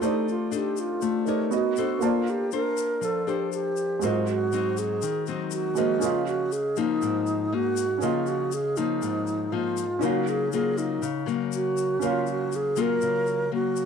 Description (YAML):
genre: bossa nova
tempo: 120 BPM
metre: 4/4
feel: straight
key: Db major from 6.0 s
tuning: A4 = 444 Hz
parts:
  - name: bright reedy wooden-headed alto flute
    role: melody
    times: 0.0-13.9 s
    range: Eb4 to Bb4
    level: -27 LUFS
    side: right 2 dB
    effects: none
  - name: nylon-string guitar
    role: accompaniment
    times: 0.0-13.9 s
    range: Ab2 to Db5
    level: -28 LUFS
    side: left 9 dB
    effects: none
  - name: warm concert grand piano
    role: accompaniment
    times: 0.0-13.9 s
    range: Ab3 to A5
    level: -31 LUFS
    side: right 14 dB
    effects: none
  - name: tube shaker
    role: percussion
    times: 0.0-13.9 s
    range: none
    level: -40 LUFS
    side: left 16 dB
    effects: none
  - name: kalimba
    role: second line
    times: 6.0-13.7 s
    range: Db4 to Eb4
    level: -35 LUFS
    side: left 10 dB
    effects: none
room: moderate spring reverb, RT60 1.2 s, studio reverb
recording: 1960s-style stereo with parts hard left and right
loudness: -24 LUFS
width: side -6 dB against mid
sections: 0.0-6.0 A section; 6.0-13.9 B section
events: none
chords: 0.0 F13/A; 1.5 Bmaj9; 2.0 Bbmaj9; 4.0 Ab7; 6.0 Db69; 10.0 Ebm9/Db